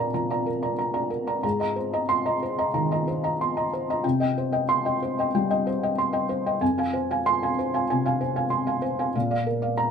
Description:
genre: neoclassical minimalist piano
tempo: 93 BPM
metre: 4/4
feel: rubato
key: F dorian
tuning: A4 = 441 Hz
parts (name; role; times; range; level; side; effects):
- felt-muted upright piano; solo; 0.0-9.9 s; F2 to C6; -23 LUFS; equal; none
room: light reverb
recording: minimal, uncompressed stereo recording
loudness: -23 LUFS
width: side -6 dB against mid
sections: 0.0-9.9 A section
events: none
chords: 0.0 Bb; 1.4 Abadd9; 4.0 Cm; 6.6 Fm; 9.1 Bb

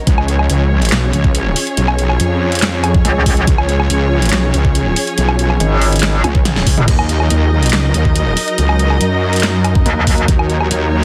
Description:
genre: heavy wobble dubstep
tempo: 141 BPM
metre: 4/4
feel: half-time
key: unclear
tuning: A4 = 440 Hz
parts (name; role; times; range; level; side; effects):
- dark studio string section; sustained chords; 0.0-11.0 s; F3 to Eb5; -23 LUFS; equal; sidechain pumping
- ethereal airy pad; texture; 0.0-11.0 s; F4 to Bb5; -27 LUFS; equal; ensemble chorus, built-in reverb, sidechain pumping
- wobble bass; bass; 0.1-11.0 s; Cb2 to Gb2; -17 LUFS; equal; chorus, overdrive
- dubstep drum kit; drums; 0.1-10.8 s; crash cymbal, handclaps, hi-hat, snare drum, toms, woodblock; -20 LUFS; equal; small room ambience
- electronic kick drum; drums; 0.1-10.4 s; none; -16 LUFS; equal; overdrive, small room ambience
- metallic wobble bass; bass; 3.0-6.9, 9.9-10.3 s; Ab1 to Eb2; -16 LUFS; equal; chorus, overdrive
room: light reverb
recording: dense, heavily limited modern master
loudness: -14 LUFS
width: mono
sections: 0.0-11.0 A section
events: drum fill 6.2-6.9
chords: 0.1 Db; 6.9 Ebm

